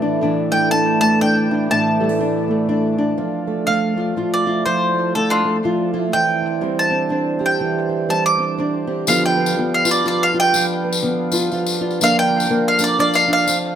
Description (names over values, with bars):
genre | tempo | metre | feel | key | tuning
acoustic folk duo or small band | 122 BPM | 3/4 | swing 59% on 8ths | D minor | A4 = 440 Hz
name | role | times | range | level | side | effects
nylon-string guitar | accompaniment | 0.0-13.8 s | D2 to F4 | -21 LUFS | left 3 dB | none
mellow accordion | sustained chords | 0.0-13.8 s | A2 to F4 | -29 LUFS | left 3 dB | none
fingerpicked plugged-in twelve-string acoustic guitar | arpeggios | 0.0-13.8 s | E3 to G4 | -22 LUFS | right 6 dB | tape echo
bowl-back mandolin | melody | 0.5-13.6 s | D4 to D6 | -18 LUFS | right 1 dB | tape echo
tambourine | percussion | 9.1-13.6 s | none | -23 LUFS | left 6 dB | none
room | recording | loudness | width
moderate large studio reverb, RT60 0.9 s | close, detailed microphones | -15 LUFS | side -9 dB against mid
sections
0.0-3.2 A section; 3.2-13.8 B section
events
mandolin solo 3.2-13.8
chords
0.0 Asus4; 3.2 Dmadd9; 6.1 Cadd9/D; 9.1 G7/D; 12.0 Bb/D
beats
| 0.23 0.72 1.22 | 1.71 2.20 2.69 | 3.18 3.67 4.16 | 4.65 5.14 5.63 | 6.13 6.62 7.11 | 7.60 8.09 8.58 | 9.07 9.56 10.05 | 10.54 11.03 11.52 | 12.01 12.50 12.99 | 13.48